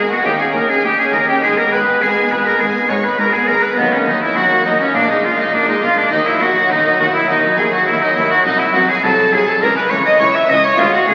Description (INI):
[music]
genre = classical, baroque-style concerto movement with solo episodes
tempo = 102 BPM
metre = 4/4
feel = straight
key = G# minor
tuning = A4 = 437 Hz
[part]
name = clear chamber violin section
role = melody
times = 0.0-11.1 s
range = B4 to E6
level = -26 LUFS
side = equal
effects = none
[part]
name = rich chamber violin section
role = second line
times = 0.0-11.1 s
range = B3 to E5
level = -21 LUFS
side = equal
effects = none
[part]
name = harpsichord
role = accompaniment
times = 0.0-11.1 s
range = B#1 to G#4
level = -28 LUFS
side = equal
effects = none
[part]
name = rich chamber viola section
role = accompaniment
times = 0.0-11.1 s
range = D#3 to D#4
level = -25 LUFS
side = equal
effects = none
[part]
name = warm chamber double bass section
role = bass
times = 0.0-11.1 s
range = G#1 to D#2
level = -31 LUFS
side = equal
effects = none
[part]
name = warm symphonic cello section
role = bass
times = 0.0-11.1 s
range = B#1 to A#2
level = -29 LUFS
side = equal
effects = none
[part]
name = clear oboe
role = melody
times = 0.1-11.1 s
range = B3 to E5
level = -16 LUFS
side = equal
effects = none
[sound]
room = wet church reverb, RT60 3.3 s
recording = very old 78 rpm record, vinyl crackle, nothing above 7.8 kHz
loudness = -14 LUFS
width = mono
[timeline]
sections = 0.0-11.1 A section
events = none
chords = 0.3 D#5; 1.4 G#m; 3.8 D#m; 5.0 A#5; 6.1 D#m; 8.5 G#7/B#; 9.6 C#m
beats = 0.25 0.84 | 1.43 2.02 2.60 3.19 | 3.78 4.37 4.95 5.54 | 6.12 6.71 7.29 7.87 | 8.45 9.04 9.62 10.20 | 10.79